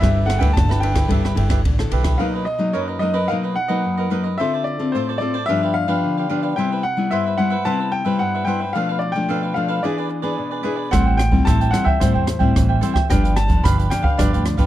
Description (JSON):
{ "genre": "samba and choro", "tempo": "110 BPM", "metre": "4/4", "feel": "straight", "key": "G major", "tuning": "A4 = 441 Hz", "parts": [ { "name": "clear baby grand piano", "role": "melody", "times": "0.0-14.7 s", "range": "C5 to B5", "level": "-23 LUFS", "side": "left 1 dB", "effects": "none" }, { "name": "cavaquinho", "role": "accompaniment", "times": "0.0-14.7 s", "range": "D4 to G5", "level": "-26 LUFS", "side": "right 6 dB", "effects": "none" }, { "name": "nylon-string guitar", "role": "accompaniment", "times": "0.0-14.7 s", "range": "F#2 to A4", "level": "-22 LUFS", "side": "left 3 dB", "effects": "none" }, { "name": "upright bass", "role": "bass", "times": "0.0-2.2, 10.9-14.7 s", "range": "G1 to E2", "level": "-19 LUFS", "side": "right 1 dB", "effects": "none" }, { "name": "open jazz drum kit", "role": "drums", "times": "0.0-2.2, 10.9-14.7 s", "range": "hi-hat, kick drum, ride cymbal, rim click", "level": "-20 LUFS", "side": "equal", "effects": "none" } ], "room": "light reverb", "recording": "dark, warm production", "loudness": "-17 LUFS", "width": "side -13 dB against mid", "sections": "0.0-2.2 A section; 2.2-14.7 B section", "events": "none", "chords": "0.0 G69; 2.2 Bmaj7; 4.4 Dm7; 5.5 G7; 6.6 Cmaj7; 8.8 Bm7b5; 9.8 E7; 10.9 Am7; 13.1 G7" }